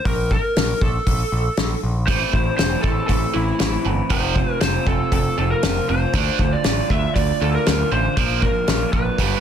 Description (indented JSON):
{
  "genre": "quiet-loud alternative rock",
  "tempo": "118 BPM",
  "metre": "4/4",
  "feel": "straight",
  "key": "A phrygian",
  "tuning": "A4 = 440 Hz",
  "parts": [
    { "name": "lead guitar through a small cranked amp", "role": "melody", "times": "0.0-9.4 s", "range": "E4 to E5", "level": "-24 LUFS", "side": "equal", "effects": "overdrive, plate reverb, digital delay" },
    { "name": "growling picked electric bass", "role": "bass", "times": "0.1-9.3 s", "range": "E1 to D2", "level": "-23 LUFS", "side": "equal", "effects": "overdrive" },
    { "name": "loose indie drum kit", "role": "drums", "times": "0.1-9.3 s", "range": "hi-hat, kick drum, snare drum", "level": "-22 LUFS", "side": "left 1 dB", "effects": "none" },
    { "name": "electric guitar through a small old amp", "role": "arpeggios", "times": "2.1-9.4 s", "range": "F2 to G4", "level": "-26 LUFS", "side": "left 1 dB", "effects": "spring reverb, plate reverb" },
    { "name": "distorted electric guitar", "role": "riff", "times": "2.1-9.4 s", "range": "F2 to D4", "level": "-25 LUFS", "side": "right 12 dB", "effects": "overdrive" }
  ],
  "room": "moderate studio reverb, RT60 0.5 s",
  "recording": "dense, heavily limited modern master",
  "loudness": "-17 LUFS",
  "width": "side -9 dB against mid",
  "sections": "0.0-9.4 A section",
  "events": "none",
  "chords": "0.1 N.C.; 2.1 Am; 4.1 F; 6.1 Dm; 8.2 Bb"
}